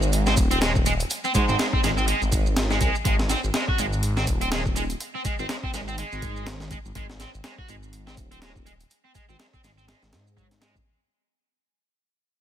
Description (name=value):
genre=breakbeat, breaks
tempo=123 BPM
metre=4/4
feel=swing 57% on 16ths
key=unclear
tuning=A4 = 437 Hz
part: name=phased detuned saw bass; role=bass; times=0.0-10.8 s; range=D#1 to G#2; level=-26 LUFS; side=equal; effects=phaser
part: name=shaker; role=drums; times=0.0-10.8 s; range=none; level=-36 LUFS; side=right 6 dB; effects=studio reverb
part: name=breakbeat sampler-style drum kit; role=drums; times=0.1-10.9 s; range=hi-hat, kick drum, snare drum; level=-26 LUFS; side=equal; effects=studio reverb
part: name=distorted electric guitar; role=riff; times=0.3-10.7 s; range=F#3 to F#4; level=-28 LUFS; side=right 1 dB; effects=distortion, tube saturation, tape echo
part: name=rich symphonic string section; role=stabs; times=1.3-1.5 s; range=G#3 to B#4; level=-30 LUFS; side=right 2 dB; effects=tape echo
room=digital ambience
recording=none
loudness=-21 LUFS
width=side -10 dB against mid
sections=0.0-10.9 A section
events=fade-out 0.0-10.9; filter sweep on detuned saw bass 0.0-10.9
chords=0.0 G#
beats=0.12 0.61 | 1.10 1.59 2.08 2.56 | 3.05 3.54 4.03 4.52 | 5.00 5.49 5.98 6.47 | 6.96 7.44 7.93 8.42 | 8.91 9.39 9.88 10.37